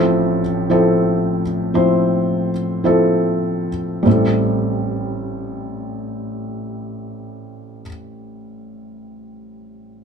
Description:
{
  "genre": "folk",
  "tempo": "48-62 BPM",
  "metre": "4/4",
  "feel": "straight",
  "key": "A minor",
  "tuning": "A4 = 440 Hz",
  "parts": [
    { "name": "felt-muted upright piano", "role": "accompaniment", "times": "0.0-10.0 s", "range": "A1 to C5", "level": "-17 LUFS", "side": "equal", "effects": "none" }
  ],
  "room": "moderate studio reverb, RT60 0.8 s",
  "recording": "dark, warm production",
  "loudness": "-16 LUFS",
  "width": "side -6 dB against mid",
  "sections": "0.0-4.1 A section; 4.1-9.1 B section",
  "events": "slowing down 0.0-4.1",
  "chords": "0.0 Fmaj7/A; 4.1 Am7",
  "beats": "0.71 1.74 2.85 | 4.07 5.33 6.59 7.85"
}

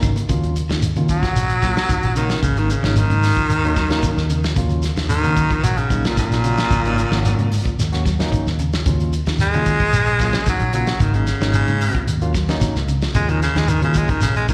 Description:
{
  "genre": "afrobeat",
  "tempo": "112 BPM",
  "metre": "4/4",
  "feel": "straight",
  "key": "Eb minor",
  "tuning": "A4 = 440 Hz",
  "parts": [
    { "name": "barky tine electric piano", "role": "accompaniment", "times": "0.0-14.5 s", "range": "Gb3 to Gb4", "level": "-30 LUFS", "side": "equal", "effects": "overdrive" },
    { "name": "fingered electric bass", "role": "bass", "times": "0.0-14.5 s", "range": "Ab1 to Eb3", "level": "-23 LUFS", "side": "equal", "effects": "none" },
    { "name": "warm soul drum kit", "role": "drums", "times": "0.0-14.5 s", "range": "hi-hat, kick drum, snare drum", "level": "-26 LUFS", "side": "equal", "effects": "none" },
    { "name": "shekere", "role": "percussion", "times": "0.0-14.5 s", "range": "none", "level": "-27 LUFS", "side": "equal", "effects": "none" },
    { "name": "clean electric guitar", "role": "arpeggios", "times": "0.3-14.5 s", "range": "Db3 to Gb3", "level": "-30 LUFS", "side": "equal", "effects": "none" },
    { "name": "raspy baritone saxophone", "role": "melody", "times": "1.1-14.5 s", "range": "Bb2 to Ab3", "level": "-23 LUFS", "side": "equal", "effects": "slapback echo" }
  ],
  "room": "studio reverb",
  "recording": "live gig heard through the venue's PA, recital hall reverb",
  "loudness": "-19 LUFS",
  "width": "mono",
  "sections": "0.3-14.5 A section",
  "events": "baritone saxophone solo 0.3-14.5",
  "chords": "0.3 Ebm9; 2.4 Ab9sus4; 4.6 Ebm9; 6.7 Ab9sus4; 8.9 Ebm9; 11.0 Ab9sus4; 13.1 Ebm9",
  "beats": "| 0.29 0.82 1.36 1.89 | 2.43 2.96 3.50 4.03 | 4.57 5.10 5.64 6.17 | 6.71 7.25 7.78 8.32 | 8.86 9.39 9.93 10.47 | 11.00 11.54 12.08 12.61 | 13.15 13.68 14.22"
}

